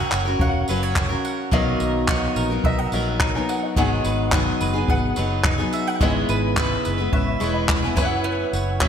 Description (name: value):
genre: acoustic pop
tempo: 107 BPM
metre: 4/4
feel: straight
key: B major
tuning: A4 = 440 Hz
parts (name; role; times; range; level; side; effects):
- dark upright piano; accompaniment; 0.0-8.9 s; B3 to C#6; -29 LUFS; left 2 dB; ensemble chorus
- picked steel-string acoustic guitar; accompaniment; 0.0-8.9 s; G#2 to B4; -24 LUFS; left 2 dB; none
- bowl-back mandolin; arpeggios; 0.0-8.9 s; G#3 to F#5; -28 LUFS; right 5 dB; none
- vintage muted fingered electric bass; bass; 0.1-8.9 s; E1 to B1; -26 LUFS; equal; none
- jazz brush drum kit; drums; 0.1-8.9 s; crash cymbal, handclaps, kick drum, tambourine; -23 LUFS; right 1 dB; gated reverb
room: moderate lush hall reverb, RT60 1.6 s, small room ambience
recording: bright 1980s-style digital production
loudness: -19 LUFS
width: side -8 dB against mid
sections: 0.0-8.9 A section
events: none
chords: 0.0 F#; 1.5 Bmaj7; 3.8 G#m7; 6.0 C#m7; 8.0 F#7sus4